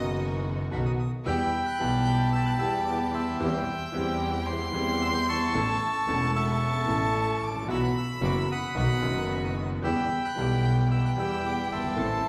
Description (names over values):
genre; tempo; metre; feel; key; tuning
tango; 112 BPM; 4/4; rubato; E minor; A4 = 441 Hz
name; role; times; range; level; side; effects
warm violin; second line; 0.0-12.3 s; D#5 to C6; -36 LUFS; equal; none
clear concert grand piano; accompaniment; 0.0-12.2 s; E1 to A4; -32 LUFS; equal; none
clear symphonic string section; stabs; 0.0-12.2 s; B3 to A4; -41 LUFS; equal; none
rich double bass; bass; 0.0-12.2 s; E1 to E2; -32 LUFS; equal; none
bandoneon; melody; 0.7-12.3 s; E5 to G6; -33 LUFS; equal; none
room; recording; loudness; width
wet recital hall reverb, RT60 1.6 s; recorded in a church or concert hall; -27 LUFS; mono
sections
0.0-1.3 A section; 1.3-12.3 B section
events
violin solo 0.0-1.3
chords
0.0 B; 1.3 Em; 3.4 C/E; 5.5 A; 7.7 Bsus4; 8.8 B; 9.8 Em